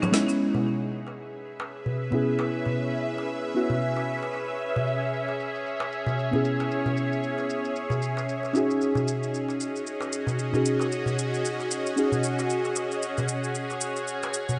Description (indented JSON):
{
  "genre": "organic downtempo",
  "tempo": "114 BPM",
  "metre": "4/4",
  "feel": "swing 58% on 16ths",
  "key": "unclear",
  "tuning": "A4 = 440 Hz",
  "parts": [
    { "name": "bowed-like drone", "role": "sustained chords", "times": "0.0-14.6 s", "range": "C#4 to F#5", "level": "-32 LUFS", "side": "equal", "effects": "built-in reverb, phaser" },
    { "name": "deep house drum kit", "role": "drums", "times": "0.0-14.6 s", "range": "congas, crash cymbal, shaker, snare drum", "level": "-35 LUFS", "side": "equal", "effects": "low-pass filter on perc, low-pass filter on snare, low-pass filter on cymbals" },
    { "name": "darbuka", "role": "percussion", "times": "0.0-14.6 s", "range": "none", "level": "-34 LUFS", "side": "equal", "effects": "none" },
    { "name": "muted felt-like synth keys", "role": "accompaniment", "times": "0.1-12.1 s", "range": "G#3 to G#4", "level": "-30 LUFS", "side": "equal", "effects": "chorus, delay" }
  ],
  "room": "moderate lush hall reverb, RT60 2.6 s",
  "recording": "nothing above 10.5 kHz",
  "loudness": "-28 LUFS",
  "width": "mono",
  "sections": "0.4-14.6 A section",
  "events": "filter sweep on drum 0.4-14.6",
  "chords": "0.0 G#7sus4; 8.8 G#7sus4/C#"
}